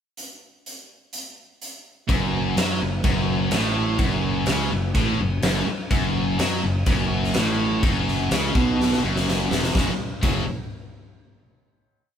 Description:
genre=hard rock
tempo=125 BPM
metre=4/4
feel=straight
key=F# minor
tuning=A4 = 440 Hz
part: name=big rock drum kit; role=drums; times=0.2-10.3 s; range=crash cymbal, hi-hat, kick drum, snare drum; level=-24 LUFS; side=equal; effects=none
part: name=high-gain distorted guitar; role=riff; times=2.1-10.4 s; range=E2 to F#3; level=-28 LUFS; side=left 1 dB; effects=distortion
part: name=sludgy distorted guitar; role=riff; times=2.1-10.4 s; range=E2 to F#3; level=-27 LUFS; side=right 8 dB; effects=overdrive
part: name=tight distorted guitar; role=riff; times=2.1-10.4 s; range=E2 to F#3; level=-28 LUFS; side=left 7 dB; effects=distortion
part: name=fuzz fingered electric bass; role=bass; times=2.1-10.4 s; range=E1 to F#2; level=-26 LUFS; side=equal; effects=overdrive
room=moderate studio ambience, RT60 0.5 s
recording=band playing live in one room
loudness=-20 LUFS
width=side -8 dB against mid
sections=0.2-2.1 pickup bar; 2.1-9.7 riff; 9.7-11.7 final chord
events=drum fill 8.8-9.7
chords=0.2 N.C.; 2.1 F#m; 9.7 F#5

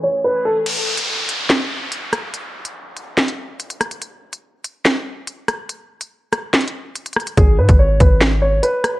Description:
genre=hip hop, drill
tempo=143 BPM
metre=4/4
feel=half-time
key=G# phrygian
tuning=A4 = 440 Hz
part: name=dark upright piano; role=melody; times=0.0-0.6, 7.4-9.0 s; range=G#4 to C#5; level=-18 LUFS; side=equal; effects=low-pass filter, ping-pong delay
part: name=dark symphonic string section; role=sustained chords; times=0.0-0.6 s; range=E3 to G#4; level=-34 LUFS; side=equal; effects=none
part: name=drill drum kit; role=drums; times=0.7-8.9 s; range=crash cymbal, handclaps, hi-hat, kick drum, rim click, snare drum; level=-17 LUFS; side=equal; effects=none
part: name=downlifter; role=sound effects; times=0.7-4.0 s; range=none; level=-24 LUFS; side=equal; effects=none
part: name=hard-hitting 808-style bass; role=bass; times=7.4-8.6 s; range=G#1 to G#2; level=-15 LUFS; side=equal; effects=none
room=light reverb, digital ambience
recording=worn, warbling old tape, cassette tape, warbly pitch drift, low-pass filter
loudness=-15 LUFS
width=side -17 dB against mid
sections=0.7-9.0 A section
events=break 0.0-0.7, 0.7-7.4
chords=0.0 Amaj7; 0.7 N.C.; 7.4 G#m

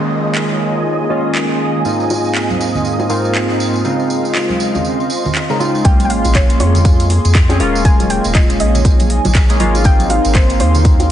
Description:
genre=deep house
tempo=120 BPM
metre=4/4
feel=swing 60% on 16ths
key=Bb minor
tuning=A4 = 440 Hz
part: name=airy breathy pad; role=sustained chords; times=0.0-11.1 s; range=Bb3 to C6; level=-25 LUFS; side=left 1 dB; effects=chorus, sidechain pumping
part: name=chorused polysynth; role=stabs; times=0.0-11.1 s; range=Ab2 to Bb4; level=-17 LUFS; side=equal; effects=sidechain pumping, digital delay
part: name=downlifter and sub drop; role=sound effects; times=0.0-1.8, 5.8-7.8 s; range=none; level=-27 LUFS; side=equal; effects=none
part: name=analog string pad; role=texture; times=0.0-5.9 s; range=Eb5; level=-27 LUFS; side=right 4 dB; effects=ensemble chorus, sidechain pumping
part: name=ethereal airy pad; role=texture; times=0.0-11.1 s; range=C4 to C6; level=-25 LUFS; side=equal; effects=ensemble chorus, built-in reverb, phaser, sidechain pumping
part: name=house drum kit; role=drums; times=0.4-11.1 s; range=handclaps, hi-hat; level=-22 LUFS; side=right 1 dB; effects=studio reverb
part: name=tambourine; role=percussion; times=1.8-11.1 s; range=none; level=-28 LUFS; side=right 4 dB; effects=none
part: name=bongos and congas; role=percussion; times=2.1-11.1 s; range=none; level=-23 LUFS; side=right 2 dB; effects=none
part: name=electronic kick drum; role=drums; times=5.8-11.0 s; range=none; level=-11 LUFS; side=equal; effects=studio reverb
part: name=soft round pluck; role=melody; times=5.9-11.1 s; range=C5 to Ab5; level=-22 LUFS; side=equal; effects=analog chorus, cassette tape, tape echo
part: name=round analog bass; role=bass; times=6.2-11.1 s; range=Eb1 to F2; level=-15 LUFS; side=equal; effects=sidechain pumping
room=light reverb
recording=heavily compressed radio sound, multiband compression, nothing above 10.3 kHz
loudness=-11 LUFS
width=side -11 dB against mid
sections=0.0-5.8 A section; 5.8-11.1 B section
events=filter sweep on analog synth pad 0.0-5.8; drop 5.8-11.1; impact 5.8-7.8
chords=0.0 Eb7sus4; 1.9 Ab69; 3.9 Dbmaj9; 5.8 Bbm9; 7.6 Eb7sus4; 9.8 Ab69

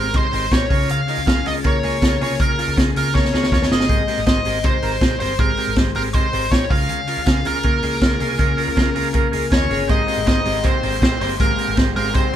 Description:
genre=jangly indie pop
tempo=160 BPM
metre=4/4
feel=straight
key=Ab major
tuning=A4 = 440 Hz
part: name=nasal lead guitar with a parked wah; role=melody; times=0.0-12.4 s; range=Bb4 to F5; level=-23 LUFS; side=left 1 dB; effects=overdrive
part: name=combo organ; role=accompaniment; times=0.0-12.4 s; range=C4 to Bb4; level=-25 LUFS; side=right 7 dB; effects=none
part: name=twelve-string electric guitar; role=arpeggios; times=0.0-12.4 s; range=Db3 to C5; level=-25 LUFS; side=left 5 dB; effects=none
part: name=vintage muted picked electric bass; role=bass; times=0.0-12.4 s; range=G1 to Eb2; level=-27 LUFS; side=equal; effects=none
part: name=vintage drum kit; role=drums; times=0.1-12.4 s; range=hi-hat, kick drum, snare drum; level=-19 LUFS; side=equal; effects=none
part: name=growling trumpet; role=second line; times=9.5-12.4 s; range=Bb3 to Eb4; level=-31 LUFS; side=left 5 dB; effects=tube saturation
part: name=raw garage guitar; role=accompaniment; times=9.9-12.4 s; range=Ab3 to C5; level=-29 LUFS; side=right 3 dB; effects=overdrive, tube saturation
room=light reverb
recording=band playing live in one room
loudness=-16 LUFS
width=side -10 dB against mid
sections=0.0-12.4 A section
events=drum fill 3.1-3.9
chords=0.0 Abmaj9; 0.7 Db6; 3.9 Abmaj9; 6.7 Db6; 9.9 Abmaj9

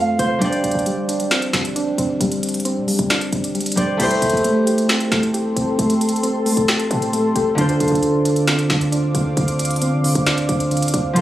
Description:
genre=hip hop, trap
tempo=134 BPM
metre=4/4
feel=half-time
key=A minor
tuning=A4 = 440 Hz
part: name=concert harp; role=accompaniment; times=0.0-11.2 s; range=D3 to F5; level=-21 LUFS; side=right 1 dB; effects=low-pass filter
part: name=soft electric-piano-like synth keys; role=arpeggios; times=0.0-11.2 s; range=D3 to G4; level=-20 LUFS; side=equal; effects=chorus, low-pass filter, ping-pong delay
part: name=short 808-style bass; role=bass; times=0.0-11.2 s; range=F1 to F3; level=-27 LUFS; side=equal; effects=none
part: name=trap drum kit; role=drums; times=0.2-11.2 s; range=crash cymbal, finger snaps, hi-hat, snare drum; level=-23 LUFS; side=equal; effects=none
part: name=deep dark ambient pad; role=sustained chords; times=4.8-11.2 s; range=A4 to D6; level=-26 LUFS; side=equal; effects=chorus, built-in reverb
room=little or no reverb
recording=recorded on a phone in the room, studio reverb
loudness=-16 LUFS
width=side -13 dB against mid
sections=0.0-4.0 A section; 4.0-11.2 B section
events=none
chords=0.4 Gsus4; 4.0 Am7; 7.6 Dm7

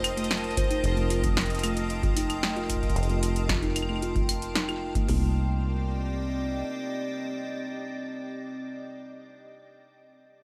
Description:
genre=IDM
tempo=113 BPM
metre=4/4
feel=straight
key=C dorian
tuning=A4 = 440 Hz
part: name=warbly nostalgic lead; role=melody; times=0.0-1.2 s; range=C5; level=-37 LUFS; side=equal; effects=chorus, tape echo
part: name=icy glass pad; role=sustained chords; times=0.0-8.6 s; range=C4 to A5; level=-36 LUFS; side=equal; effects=chorus, built-in reverb, sidechain pumping
part: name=deep acid bass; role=bass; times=0.0-6.6 s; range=F1 to C2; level=-32 LUFS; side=equal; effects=tube saturation
part: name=electro analog drum machine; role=drums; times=0.0-5.1 s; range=claves, hi-hat, snare drum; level=-33 LUFS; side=equal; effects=delay
part: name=bubbling stepped-filter texture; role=texture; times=0.0-5.1 s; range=Eb5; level=-42 LUFS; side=equal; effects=chorus, built-in reverb
part: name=kalimba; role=arpeggios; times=0.2-5.3 s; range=A3 to F4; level=-36 LUFS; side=equal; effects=low-pass filter, digital delay
part: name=electro analog drum machine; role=drums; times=0.6-5.2 s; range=hi-hat, kick drum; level=-31 LUFS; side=equal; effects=none
room=light reverb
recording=none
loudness=-28 LUFS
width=mono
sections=0.0-5.1 A section; 5.1-9.3 B section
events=filter sweep on kalimba 0.0-5.1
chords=0.0 F7; 5.1 Cm

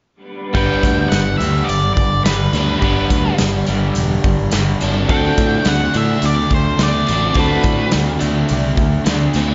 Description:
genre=rock, shoegaze and dream pop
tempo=106 BPM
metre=4/4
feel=straight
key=unclear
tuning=A4 = 440 Hz
part: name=octave-fuzz lead guitar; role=melody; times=0.5-7.9 s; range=B4 to G5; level=-24 LUFS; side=equal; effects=distortion, slapback echo
part: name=crunchy overdriven guitar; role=riff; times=0.5-9.5 s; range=G2 to D4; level=-25 LUFS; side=equal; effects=none
part: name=overdriven semi-hollow guitar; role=riff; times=0.5-9.5 s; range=D3 to B4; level=-26 LUFS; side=equal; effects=reverse reverb
part: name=picked electric bass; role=bass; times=0.5-9.5 s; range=E1 to A2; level=-22 LUFS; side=equal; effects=none
part: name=big rock drum kit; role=drums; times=0.5-9.5 s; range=hi-hat, kick drum, snare drum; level=-23 LUFS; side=equal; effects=none
part: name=overdriven semi-hollow guitar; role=riff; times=0.6-9.5 s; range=G2 to F#4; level=-24 LUFS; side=equal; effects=ensemble chorus
part: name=tambourine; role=percussion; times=0.6-9.5 s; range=none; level=-36 LUFS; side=equal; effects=none
room=light reverb, studio reverb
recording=nothing above 7.6 kHz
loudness=-16 LUFS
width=mono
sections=0.6-9.5 A section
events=none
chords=0.6 G; 5.1 D7(no3)

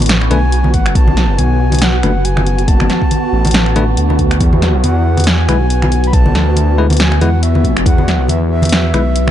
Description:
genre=deep dubstep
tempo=139 BPM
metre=4/4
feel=swing 56% on 16ths, half-time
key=B dorian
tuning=A4 = 442 Hz
part: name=deep dark ambient pad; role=sustained chords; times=0.0-9.3 s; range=B3 to B4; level=-21 LUFS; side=left 2 dB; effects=chorus, built-in reverb
part: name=dark detuned saw bass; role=bass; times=0.0-9.3 s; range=F#1 to E2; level=-13 LUFS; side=equal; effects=none
part: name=deep house drum kit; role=drums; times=0.0-9.3 s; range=finger snaps, hi-hat, snare drum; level=-18 LUFS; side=equal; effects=none
part: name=wind-like tuned noise texture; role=texture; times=0.0-9.3 s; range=F#4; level=-23 LUFS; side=right 2 dB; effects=built-in reverb
part: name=breathy flute-like synth lead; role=melody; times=0.3-9.3 s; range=E5 to B5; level=-23 LUFS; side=right 1 dB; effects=chorus, dub echo
part: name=barky tine electric piano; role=stabs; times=0.3-9.0 s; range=G#3 to B4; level=-23 LUFS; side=left 4 dB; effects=vintage 12-bit sampler grit, dub echo
part: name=congas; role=percussion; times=0.3-9.3 s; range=none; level=-20 LUFS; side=equal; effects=none
part: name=electronic kick drum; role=drums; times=0.7-8.0 s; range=none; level=-13 LUFS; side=equal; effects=none
room=little or no reverb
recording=dark, warm production, nothing above 10.9 kHz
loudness=-10 LUFS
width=side -11 dB against mid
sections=0.0-9.3 A section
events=none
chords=0.0 Bm7; 4.4 E

